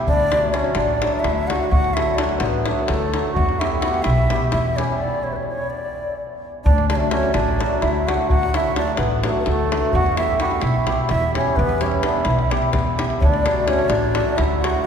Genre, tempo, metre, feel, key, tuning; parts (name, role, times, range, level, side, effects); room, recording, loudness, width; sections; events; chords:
balkan folk, Balkan wedding band; 256 BPM (eighths); 7/8; straight; D major; A4 = 440 Hz
cimbalom; accompaniment; 0.0-14.9 s; F#3 to G4; -24 LUFS; left 1 dB
breathy ney; melody; 0.1-14.9 s; A4 to F#5; -24 LUFS; left 1 dB
mellow accordion; second line; 0.1-14.9 s; A3 to F#4; -26 LUFS; right 4 dB
upright bass; bass; 0.1-14.7 s; A1 to E2; -23 LUFS; equal
davul; percussion; 0.1-14.7 s; -24 LUFS; left 1 dB
wet cathedral reverb, RT60 4.4 s; recorded in a church or concert hall; -17 LUFS; side -7 dB against mid
0.0-6.7 A section; 6.7-14.9 A section
stop 5.0-6.7
0.1 D; 3.4 Em; 5.0 N.C.; 6.7 D; 9.9 Em; 13.2 D